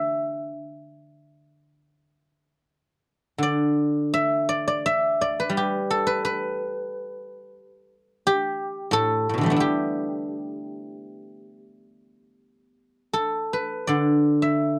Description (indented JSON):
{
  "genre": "chinese traditional, Chinese solo plucked strings",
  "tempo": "78-90 BPM",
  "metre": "4/4",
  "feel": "rubato",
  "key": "G gong mode",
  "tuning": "A4 = 442 Hz",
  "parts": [
    { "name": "guzheng", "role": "solo", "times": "0.0-14.8 s", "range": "A2 to E5", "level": "-25 LUFS", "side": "equal", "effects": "none" }
  ],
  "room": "little or no reverb",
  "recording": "dry, close 1970s-style studio recording",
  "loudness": "-24 LUFS",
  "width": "mono",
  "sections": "0.0-13.9 A section",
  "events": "none",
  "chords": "none"
}